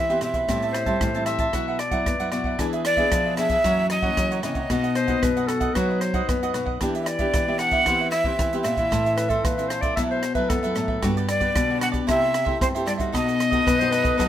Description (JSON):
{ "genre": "samba and choro", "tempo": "114 BPM", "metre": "4/4", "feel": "straight", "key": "unclear", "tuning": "A4 = 442 Hz", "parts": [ { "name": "breathy bright jazz flute", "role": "melody", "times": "0.0-14.3 s", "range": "C5 to F#5", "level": "-23 LUFS", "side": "equal", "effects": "none" }, { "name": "cavaquinho", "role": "accompaniment", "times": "0.0-14.3 s", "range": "D4 to A5", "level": "-30 LUFS", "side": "right 6 dB", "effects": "none" }, { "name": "nylon-string guitar", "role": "accompaniment", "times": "0.0-14.3 s", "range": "F#2 to G#4", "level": "-31 LUFS", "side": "left 2 dB", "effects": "none" }, { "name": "nylon-string guitar", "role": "bass", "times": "0.0-14.3 s", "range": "G2 to C4", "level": "-26 LUFS", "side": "left 1 dB", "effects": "none" }, { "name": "compact cocktail drum kit", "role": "drums", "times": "0.1-14.3 s", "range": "hi-hat, kick drum, rim click", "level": "-28 LUFS", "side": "equal", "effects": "none" }, { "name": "clear clarinet", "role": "second line", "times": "0.7-14.2 s", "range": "A4 to E5", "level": "-27 LUFS", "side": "left 3 dB", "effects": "none" } ], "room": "light reverb", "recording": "minimal, uncompressed stereo recording", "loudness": "-20 LUFS", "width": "side -11 dB against mid", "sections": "0.0-14.3 A section", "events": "none", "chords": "0.5 Am7; 1.5 Bsus4; 2.6 E7; 3.6 F#7; 4.7 B; 6.8 Em7; 7.9 Cmaj7/E; 8.9 Am; 10.0 B7sus4; 11.0 Gmaj7; 12.1 C6; 13.1 B7" }